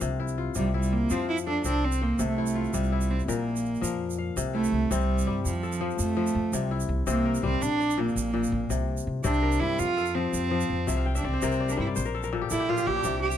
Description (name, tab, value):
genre	west african traditional, West African string and xylophone music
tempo	111 BPM (dotted quarters)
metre	12/8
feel	straight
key	C mixolydian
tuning	A4 = 440 Hz
part	kora	arpeggios	0.0-13.4 s	Bb2 to G5	-30 LUFS	left 8 dB	none
part	upright bass	bass	0.0-13.4 s	Bb1 to G2	-30 LUFS	equal	none
part	egg shaker	percussion	0.0-13.4 s	none	-39 LUFS	right 8 dB	none
part	clear cello	melody	0.6-13.4 s	F3 to G4	-28 LUFS	right 3 dB	none
room	light reverb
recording	close, detailed microphones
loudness	-24 LUFS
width	side -10 dB against mid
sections	0.0-4.4 A section; 4.4-13.4 B section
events	cello solo 4.4-13.4; kora fill 10.9-13.0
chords	0.0 C; 1.1 F; 3.3 Bb5; 4.4 C; 5.4 F; 6.5 C; 7.6 Bb; 8.7 C5; 9.8 F; 10.9 C5; 12.0 Bbmaj13